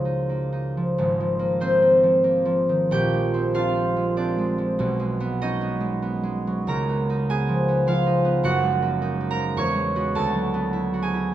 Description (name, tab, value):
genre	classical, solo harp piece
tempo	82-109 BPM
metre	3/4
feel	rubato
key	unclear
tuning	A4 = 440 Hz
part	concert harp	solo	0.0-11.3 s	Gb1 to C#6	-20 LUFS	right 1 dB	none
room	moderate recital hall reverb, RT60 1.4 s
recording	close, detailed microphones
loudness	-20 LUFS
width	side -12 dB against mid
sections	1.0-11.3 A section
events	none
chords	0.0 Db69; 1.0 Ab69; 2.9 Bb13; 4.8 B69; 6.7 Db13; 8.4 Gb69; 9.6 E69; 10.2 D69